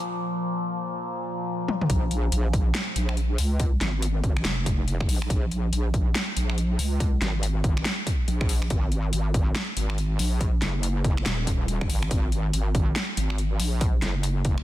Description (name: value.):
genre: deep dubstep.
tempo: 141 BPM.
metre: 4/4.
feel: swing 61% on 16ths, half-time.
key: Bb minor.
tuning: A4 = 442 Hz.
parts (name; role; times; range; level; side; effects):
overtone-sweeping drone; sustained chords; 0.0-1.9 s; Bb2 to F3; -30 LUFS; left 1 dB; chorus, built-in reverb.
dubstep drum kit; drums; 1.7-14.6 s; finger snaps, hi-hat, snare drum, toms; -30 LUFS; left 1 dB; none.
wobble bass; bass; 1.9-14.6 s; Eb1 to Db2; -25 LUFS; equal; chorus.
electronic kick drum; drums; 1.9-14.6 s; none; -24 LUFS; equal; none.
room: little or no reverb.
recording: dense, heavily limited modern master.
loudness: -23 LUFS.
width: side -14 dB against mid.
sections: 0.0-1.9 A section; 1.9-14.6 B section.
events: build-up 0.0-1.9; drum fill 1.7; drop 1.9-14.6.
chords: 0.0 Bb5; 1.9 Bbm7; 8.7 Absus2.